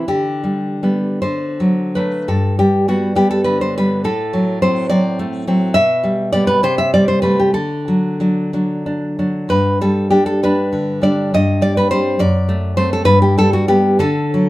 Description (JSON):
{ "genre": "romantic piece for solo classical guitar", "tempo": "49-71 BPM (dotted quarters)", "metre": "6/8", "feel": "rubato", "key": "G major", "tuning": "A4 = 440 Hz", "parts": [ { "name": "nylon-string guitar", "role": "solo", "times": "0.0-14.5 s", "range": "F#2 to E5", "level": "-14 LUFS", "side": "equal", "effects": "none" } ], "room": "light reverb", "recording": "band playing live in one room", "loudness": "-14 LUFS", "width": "side -17 dB against mid", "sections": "0.0-2.3 A section; 2.3-14.5 A section", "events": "none", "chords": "0.1 G/D; 1.2 D; 2.3 G; 4.1 Am6; 5.8 G/B; 6.6 Am7/C; 7.5 D; 9.5 G; 11.3 C5/G; 12.2 D7/F#; 13.1 G" }